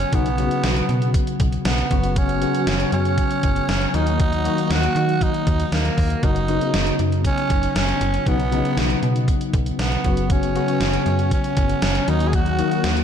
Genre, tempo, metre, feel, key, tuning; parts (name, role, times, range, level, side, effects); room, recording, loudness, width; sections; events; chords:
1980s-style pop; 118 BPM; 4/4; straight; F# major; A4 = 439 Hz
raspy tenor saxophone; melody; 0.0-13.0 s; A#3 to G#4; -24 LUFS; right 3 dB; analog delay
bell-like tine electric piano; accompaniment; 0.0-13.0 s; C#3 to F#4; -23 LUFS; left 4 dB; ensemble chorus
slap-like FM bass; bass; 0.0-13.0 s; F#1 to D#3; -23 LUFS; equal
gated 80s digital drum machine; drums; 0.0-13.0 s; hi-hat, kick drum, snare drum; -23 LUFS; equal; gated reverb, gated reverb snare
moderate plate reverb, RT60 2.0 s, digital ambience; dreamy mix soaked in reverb; -18 LUFS; side -8 dB against mid
0.0-13.0 A section
0.1 Bsus2; 1.9 F#sus4; 3.9 D#m; 6.2 F#sus4; 8.3 Badd9; 10.0 F#sus4; 12.1 D#m